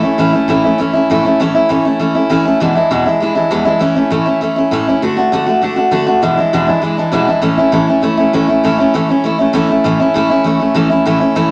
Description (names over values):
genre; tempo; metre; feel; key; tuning
rock; 199 BPM; 4/4; straight; A major; A4 = 440 Hz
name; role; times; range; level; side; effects
picked steel-string acoustic guitar; solo; 0.0-11.5 s; E2 to F#4; -13 LUFS; equal; none
room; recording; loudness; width
moderate club reverb, RT60 0.5 s; none; -13 LUFS; mono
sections
0.0-8.6 A section; 8.6-11.5 B section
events
none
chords
0.0 A; 2.6 E7; 3.8 A; 5.0 D; 6.2 E7; 7.4 A